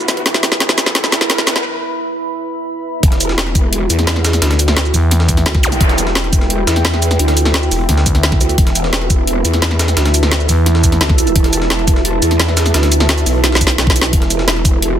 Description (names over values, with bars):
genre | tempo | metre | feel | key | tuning
dark technical drum and bass | 173 BPM | 4/4 | straight | E minor | A4 = 440 Hz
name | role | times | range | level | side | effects
deep dark ambient pad | sustained chords | 0.0-15.0 s | E4 to B5 | -20 LUFS | right 3 dB | chorus, built-in reverb, sidechain pumping
growl bass | bass | 0.0-15.0 s | E1 to E2 | -16 LUFS | equal | chorus, tube saturation, sidechain pumping, high-pass filter
drum and bass drum kit | drums | 0.0-14.9 s | hi-hat, shaker, snare drum | -16 LUFS | equal | overdrive
riser and zap | sound effects | 0.0-1.6, 5.6-5.7 s | none | -22 LUFS | equal | none
breakbeat sampler-style drum kit | drums | 3.0-14.9 s | hi-hat, snare drum | -24 LUFS | equal | high-pass filter on hats, high-pass filter on snare
electronic kick drum | drums | 3.0-14.7 s | none | -13 LUFS | equal | overdrive
growling FM bass | bass | 4.9-5.4, 7.9-8.4, 10.5-11.0 s | D2 to E2 | -12 LUFS | equal | none
room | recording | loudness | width
digital ambience | dense, heavily limited modern master, high-pass filter | -11 LUFS | side -10 dB against mid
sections
0.0-3.0 A section; 3.0-15.0 B section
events
build-up 0.0-3.0; drum fill 0.0-1.6, 13.4-14.1; riser 0.0-1.6; filter sweep 0.0-3.0; break 1.6-3.0; drop 3.0-15.0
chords
0.0 E5; 3.0 Em